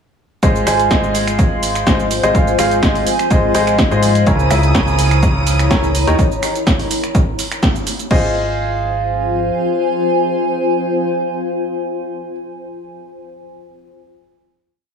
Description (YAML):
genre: piano house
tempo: 125 BPM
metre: 4/4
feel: straight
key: Ab major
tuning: A4 = 439 Hz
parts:
  - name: clear grand piano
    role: riff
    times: 0.4-12.3 s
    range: Db3 to Ab5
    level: -17 LUFS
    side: equal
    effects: sidechain pumping, digital delay
  - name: organ-like FM bass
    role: bass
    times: 0.4-9.5 s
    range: Ab1 to Ab2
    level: -20 LUFS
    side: equal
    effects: tube saturation, sidechain pumping
  - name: electronic kick drum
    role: drums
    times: 0.4-8.2 s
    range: none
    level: -17 LUFS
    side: equal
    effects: none
  - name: punchy analog drum machine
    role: drums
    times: 0.4-8.2 s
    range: crash cymbal, finger snaps, hi-hat, shaker, snare drum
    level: -21 LUFS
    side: right 2 dB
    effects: none
  - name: granular cloud pad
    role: texture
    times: 1.5-12.4 s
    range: Fb4 to Bb5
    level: -20 LUFS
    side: left 1 dB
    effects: built-in reverb, sidechain pumping
  - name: string machine, violins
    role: sustained chords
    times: 4.3-6.2 s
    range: Eb6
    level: -24 LUFS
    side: right 1 dB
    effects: ensemble chorus, sidechain pumping
room: light reverb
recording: small room ambience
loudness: -13 LUFS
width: side -7 dB against mid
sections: 0.4-8.1 drop; 8.1-11.9 final chord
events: drop 0.4-8.1; band accent 7.6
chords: 0.4 Ab6; 4.3 Dbm6; 5.9 Eb7; 8.1 Ab6